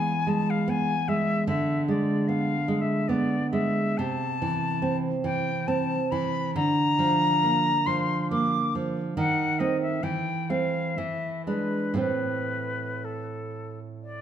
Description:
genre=romantic duo for flute and classical guitar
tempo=56-76 BPM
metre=3/4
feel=rubato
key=A minor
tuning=A4 = 440 Hz
part: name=bright silver concert flute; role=melody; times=0.0-14.2 s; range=A4 to D6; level=-28 LUFS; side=left 3 dB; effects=none
part: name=nylon-string guitar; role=accompaniment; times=0.0-14.2 s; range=A2 to D4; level=-26 LUFS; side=right 2 dB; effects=none
room=wet large studio reverb, RT60 1.3 s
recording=band playing live in one room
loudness=-24 LUFS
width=side -9 dB against mid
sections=0.0-14.2 A section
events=none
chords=0.0 E; 1.5 Ddim7; 4.0 Am/C; 6.6 Bb/D; 9.2 D#dim7; 10.0 Am/E; 11.0 E7; 12.0 Am

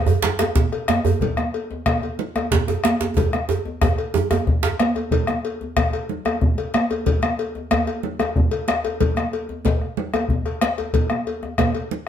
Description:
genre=west african traditional, West African drum ensemble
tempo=123 BPM (dotted quarters)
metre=12/8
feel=straight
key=none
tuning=none
part: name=bombo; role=percussion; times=0.1-11.7 s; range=none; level=-22 LUFS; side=left 2 dB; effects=none
part: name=cowbell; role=percussion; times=0.1-11.9 s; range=none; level=-28 LUFS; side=left 6 dB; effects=none
part: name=djembe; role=percussion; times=0.1-4.8 s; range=none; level=-21 LUFS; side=right 4 dB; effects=none
part: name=congas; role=percussion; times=0.2-12.1 s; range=none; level=-26 LUFS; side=right 3 dB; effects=none
part: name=djembe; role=percussion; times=0.4-11.7 s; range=none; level=-27 LUFS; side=left 1 dB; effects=none
room=moderate studio reverb, RT60 0.7 s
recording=band playing live in one room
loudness=-19 LUFS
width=side -9 dB against mid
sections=0.0-5.1 A section; 5.1-12.1 B section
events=drum fill 3.2-5.1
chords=none

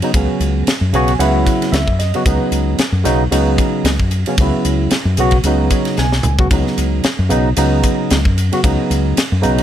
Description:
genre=electric jazz fusion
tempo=113 BPM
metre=4/4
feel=swing 55% on 16ths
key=C# minor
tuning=A4 = 440 Hz
part: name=barky tine electric piano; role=accompaniment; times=0.0-9.6 s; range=C#3 to G#5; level=-17 LUFS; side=right 1 dB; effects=overdrive, analog chorus
part: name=fingered electric bass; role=bass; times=0.0-9.6 s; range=B1 to F#2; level=-16 LUFS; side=equal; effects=none
part: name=crisp fusion drum kit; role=drums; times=0.0-9.6 s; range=hi-hat, kick drum, ride cymbal, snare drum, toms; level=-18 LUFS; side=equal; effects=none
room=little or no reverb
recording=none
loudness=-13 LUFS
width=side -10 dB against mid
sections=0.0-9.6 A section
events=tine electric piano fill 0.7-2.3, 5.4-6.5; drum fill 6.0-6.5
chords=0.0 C#m9

